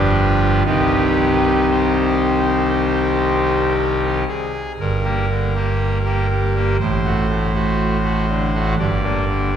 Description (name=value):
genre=classical, chorale-style piece for pipe organ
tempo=59 BPM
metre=4/4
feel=rubato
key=C minor, G minor from 4.8 s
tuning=A4 = 436 Hz
part: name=pipe organ, trumpet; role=solo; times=0.0-9.6 s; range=G1 to D5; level=-16 LUFS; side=equal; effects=none
room=wet church reverb, RT60 2.6 s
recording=dark, warm production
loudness=-16 LUFS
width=side -8 dB against mid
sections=0.0-4.8 A section; 4.8-9.6 B section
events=none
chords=0.0 G7; 0.7 Cm; 4.8 Gm; 6.8 D7/A (rootless); 8.8 Gm